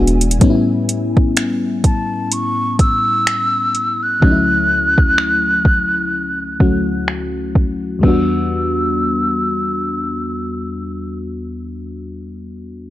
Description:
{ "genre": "contemporary R&B", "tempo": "63 BPM", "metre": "4/4", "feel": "swing 58% on 16ths", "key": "E dorian", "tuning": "A4 = 436 Hz", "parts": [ { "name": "mellow FM electric piano", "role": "accompaniment", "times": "0.0-12.9 s", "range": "D2 to F#4", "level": "-19 LUFS", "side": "left 2 dB", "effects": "chorus" }, { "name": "smooth R&B drum kit", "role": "drums", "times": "0.1-8.3 s", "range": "crash cymbal, finger snaps, hi-hat, kick drum", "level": "-14 LUFS", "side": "equal", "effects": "overdrive" }, { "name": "breathy mellow concert flute", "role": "melody", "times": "1.9-11.2 s", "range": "A5 to F#6", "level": "-18 LUFS", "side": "right 1 dB", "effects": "analog delay" } ], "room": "digital ambience", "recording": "dry, gritty hardware recording, low-pass filter", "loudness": "-14 LUFS", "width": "side -14 dB against mid", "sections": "0.4-8.0 A section; 8.0-11.8 B section", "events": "filter sweep 0.4-8.0", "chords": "0.4 A7; 4.2 Dmaj7; 8.0 Em7", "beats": "| 0.41 1.36 2.32 3.27 | 4.22 5.17 6.13 7.08 | 8.03 8.98 9.94 10.89" }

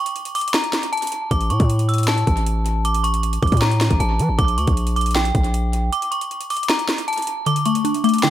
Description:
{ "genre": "hip hop, trap", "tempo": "156 BPM", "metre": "4/4", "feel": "half-time", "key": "unclear", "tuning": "A4 = 440 Hz", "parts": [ { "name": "metallic FM bell", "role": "melody", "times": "0.0-8.3 s", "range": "G5 to E6", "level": "-22 LUFS", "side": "equal", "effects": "chorus, low-pass filter, tape echo" }, { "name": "trap drum kit", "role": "drums", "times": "0.1-8.3 s", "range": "hi-hat, kick drum, snare drum", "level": "-22 LUFS", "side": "equal", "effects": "tape echo" }, { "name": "distorted 808-style bass", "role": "bass", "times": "1.3-5.9 s", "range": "A1 to E3", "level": "-19 LUFS", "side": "equal", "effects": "distortion" }, { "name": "mallet-like synth pluck", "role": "accompaniment", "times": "7.5-8.3 s", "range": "D3 to D4", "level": "-17 LUFS", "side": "left 3 dB", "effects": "chorus, phaser, low-pass filter, tape echo" } ], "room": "light reverb, digital ambience", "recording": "echo-heavy mix", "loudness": "-17 LUFS", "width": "side -12 dB against mid", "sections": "0.0-8.3 A section", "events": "break 0.0-1.3, 5.9-7.5; kick muted 7.5-8.3", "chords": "0.0 N.C.; 1.3 A; 4.4 N.C.; 7.5 D5", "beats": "0.16 0.54 0.93 | 1.31 1.70 2.08 2.46 | 2.85 3.23 3.62 4.00 | 4.39 4.77 5.16 5.54 | 5.92 6.31 6.70 7.08 | 7.46 7.85 8.23" }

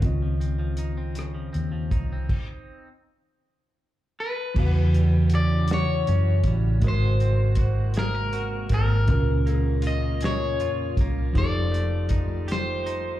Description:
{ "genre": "slow six-eight R&B", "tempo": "53 BPM (dotted quarters)", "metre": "6/8", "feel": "straight", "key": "unclear", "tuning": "A4 = 441 Hz", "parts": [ { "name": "clean electric guitar", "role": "second line", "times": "0.0-13.2 s", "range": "C#3 to A#4", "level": "-38 LUFS", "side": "right 5 dB", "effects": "plate reverb, slapback echo" }, { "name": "mellow tine electric piano", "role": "accompaniment", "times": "0.0-13.2 s", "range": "A#2 to F#5", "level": "-29 LUFS", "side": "equal", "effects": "medium stereo tremolo, plate reverb, slapback echo" }, { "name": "vintage muted fingered electric bass", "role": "bass", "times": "0.0-13.2 s", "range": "F1 to F#2", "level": "-23 LUFS", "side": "equal", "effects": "none" }, { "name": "warm soul drum kit", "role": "drums", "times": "0.0-13.0 s", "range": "crash cymbal, hi-hat, kick drum, rim click, snare drum", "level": "-26 LUFS", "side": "equal", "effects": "none" }, { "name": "electric guitar at the edge of break-up", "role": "melody", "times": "4.2-13.2 s", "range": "A#4 to D#5", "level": "-29 LUFS", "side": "left 2 dB", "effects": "spring reverb, slapback echo, tape echo" }, { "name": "soft additive organ-like pad", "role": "sustained chords", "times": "5.1-13.2 s", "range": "B#2 to F#4", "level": "-36 LUFS", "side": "right 1 dB", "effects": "ensemble chorus, built-in reverb" } ], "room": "little or no reverb", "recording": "live gig heard through the venue's PA, club reverb", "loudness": "-21 LUFS", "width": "side -14 dB against mid", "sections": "0.0-4.6 A section; 4.6-13.2 B section", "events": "stop 2.3-4.6", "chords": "0.0 C#maj9; 2.3 N.C.; 4.6 Em69; 6.8 G#9; 9.1 C#6; 11.4 F9", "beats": "| 0.03 1.17 | 2.30 3.43 | 4.56 5.69 | 6.83 7.96 | 9.09 10.22 | 11.35 12.49" }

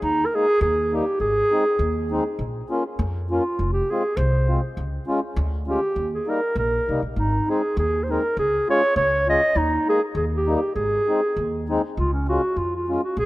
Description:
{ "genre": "alpine folk, alpine dance band", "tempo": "100 BPM", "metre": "2/4", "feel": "swing 54% on 8ths", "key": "Ab major", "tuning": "A4 = 441 Hz", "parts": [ { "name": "mellow clarinet", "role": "melody", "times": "0.0-13.3 s", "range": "Db4 to Eb5", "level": "-22 LUFS", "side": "right 1 dB", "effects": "none" }, { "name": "upright bass", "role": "bass", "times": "0.0-13.3 s", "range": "F1 to F2", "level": "-25 LUFS", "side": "equal", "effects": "none" }, { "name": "mellow accordion", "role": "accompaniment", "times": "0.3-13.0 s", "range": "G3 to F4", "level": "-27 LUFS", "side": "left 2 dB", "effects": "none" } ], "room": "moderate lush hall reverb, RT60 2.5 s", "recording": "rough home demo mix", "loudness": "-20 LUFS", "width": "side -18 dB against mid", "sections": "0.0-12.0 A section; 12.0-13.3 B section", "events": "none", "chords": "0.0 Ebsus4; 0.6 Eb; 1.2 Ab; 2.4 Bbm; 3.6 Fm; 4.8 Db; 6.0 Eb; 7.2 Ab; 8.4 Db; 9.6 Ebsus4; 10.2 Eb; 10.8 Ab; 12.0 Db", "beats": "| 0.03 0.61 | 1.20 1.80 | 2.39 2.99 | 3.59 4.17 | 4.76 5.36 | 5.95 6.56 | 7.17 7.77 | 8.37 8.97 | 9.56 10.16 | 10.76 11.36 | 11.97 12.57 | 13.17" }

